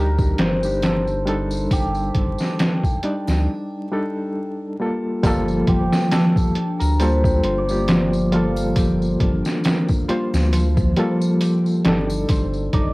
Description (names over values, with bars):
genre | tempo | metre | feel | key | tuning
trip hop | 68 BPM | 4/4 | swing 56% on 16ths | unclear | A4 = 441 Hz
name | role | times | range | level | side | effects
cimbalom | melody | 0.0-12.9 s | G4 to F5 | -27 LUFS | equal | cassette tape, tape echo
barky reed electric piano | accompaniment | 0.0-12.9 s | G3 to D5 | -24 LUFS | left 1 dB | overdrive, fast tremolo, cassette tape, tape echo
round analog bass | bass | 0.0-12.9 s | G1 to D2 | -22 LUFS | equal | none
trip hop sampler-style drum kit | drums | 0.2-12.9 s | hi-hat, kick drum, snare drum | -20 LUFS | equal | overdrive
tambourine and triangle | percussion | 0.2-12.7 s | none | -39 LUFS | left 4 dB | none
concert harp | arpeggios | 5.2-12.9 s | F3 to G4 | -22 LUFS | equal | cassette tape, tape echo
room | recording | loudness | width
moderate booth ambience, RT60 0.2 s | home recording on cassette, vinyl crackle | -17 LUFS | side -22 dB against mid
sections
0.0-5.2 A section; 5.2-12.9 B section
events
filter sweep on reed electric piano 0.0-5.2; break 3.5-5.2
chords
0.0 F13/G (rootless); 5.2 F13/G